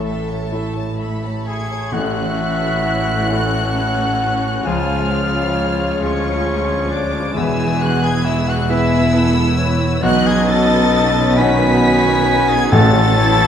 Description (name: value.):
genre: cinematic, emotional film score for orchestra.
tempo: 44 BPM (dotted quarters).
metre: 6/8.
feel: rubato.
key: A major.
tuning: A4 = 440 Hz.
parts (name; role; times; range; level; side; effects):
rich studio violin section; melody; 0.0-13.5 s; E5 to B6; -24 LUFS; equal; none.
mellow clarinet; second line; 0.0-13.5 s; A3 to G#5; -23 LUFS; left 2 dB; none.
rich studio violin section; second line; 0.0-13.5 s; F#4 to A5; -27 LUFS; left 1 dB; none.
clear concert grand piano; accompaniment; 0.0-13.5 s; E1 to B4; -23 LUFS; left 2 dB; none.
rich studio viola section; accompaniment; 0.0-13.5 s; D#3 to A4; -25 LUFS; right 1 dB; none.
mellow French horn section; sustained chords; 0.0-13.5 s; F#3 to A4; -25 LUFS; left 3 dB; none.
concert harp; arpeggios; 0.0-13.5 s; A2 to C#6; -26 LUFS; left 4 dB; none.
rich studio double bass section; bass; 0.0-13.5 s; E1 to D2; -23 LUFS; right 3 dB; none.
warm studio cello section; bass; 0.0-13.5 s; C#2 to B2; -23 LUFS; right 2 dB; none.
clear oboe; second line; 1.5-13.5 s; C#4 to B4; -26 LUFS; right 1 dB; none.
mellow hollow wooden flute; second line; 1.5-13.5 s; C#5 to C#6; -26 LUFS; left 3 dB; none.
timpani; percussion; 1.9-3.2, 12.7-13.5 s; A2; -19 LUFS; right 2 dB; none.
room: wet scoring stage reverb, RT60 1.9 s.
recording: minimal, uncompressed stereo recording, vinyl crackle.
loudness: -14 LUFS.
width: side -8 dB against mid.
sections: 0.0-1.9 A section; 1.9-13.5 A section.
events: none.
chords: 0.0 A; 1.9 A6; 4.7 C#; 7.4 E; 10.0 Badd9; 12.7 A6.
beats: 0.52 | 1.93 3.29 | 4.66 6.01 | 7.36 8.70 | 10.04 11.38 | 12.72.